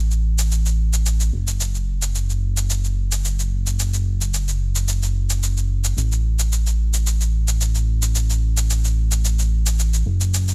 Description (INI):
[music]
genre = nu-disco, nu disco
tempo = 110 BPM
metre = 4/4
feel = straight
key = unclear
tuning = A4 = 440 Hz
[part]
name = chorused synth bass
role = bass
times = 0.0-10.5 s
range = F#1 to A1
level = -21 LUFS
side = equal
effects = none
[part]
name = shaker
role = drums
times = 0.1-10.5 s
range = none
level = -28 LUFS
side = equal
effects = studio reverb
[sound]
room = little or no reverb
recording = none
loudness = -21 LUFS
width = mono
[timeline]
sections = 0.0-10.5 A section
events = none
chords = none